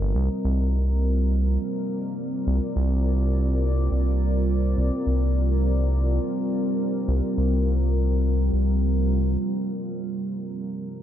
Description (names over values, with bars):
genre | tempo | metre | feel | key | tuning
ambient dub | free time | none | none | C minor | A4 = 440 Hz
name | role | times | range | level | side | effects
deep dark ambient pad | sustained chords | 0.0-11.0 s | G3 to Eb5 | -26 LUFS | equal | chorus, built-in reverb
round analog bass | bass | 0.0-9.4 s | G1 to C2 | -21 LUFS | equal | none
room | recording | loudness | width
light reverb | none | -21 LUFS | side -10 dB against mid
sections
0.0-9.4 A section; 9.4-11.0 B section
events
none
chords
0.0 Cm7